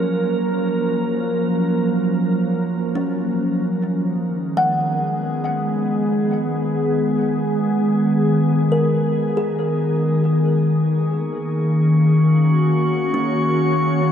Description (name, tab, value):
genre	ambient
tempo	69 BPM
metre	4/4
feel	straight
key	unclear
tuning	A4 = 441 Hz
part	glassy FM pad	sustained chords	0.0-14.1 s	D#3 to C#5	-17 LUFS	equal	ensemble chorus, built-in reverb, shimmer reverb
part	kalimba	arpeggios	0.0-14.1 s	C#4 to F#5	-26 LUFS	equal	tape echo, shimmer reverb
part	drifting glass-harmonics texture	texture	11.6-14.1 s	C#6	-26 LUFS	equal	chorus, built-in reverb, shimmer reverb
room	wet huge ambient reverb, RT60 9.0 s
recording	dark, warm production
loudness	-17 LUFS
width	side -8 dB against mid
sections	0.0-14.1 A section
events	none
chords	0.0 F#maj7; 3.7 G#m; 10.7 D#m7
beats	| 0.27 1.14 2.01 2.88 | 3.75 4.62 5.49 6.36 | 7.22 8.10 8.96 9.83 | 10.70 11.57 12.44 13.31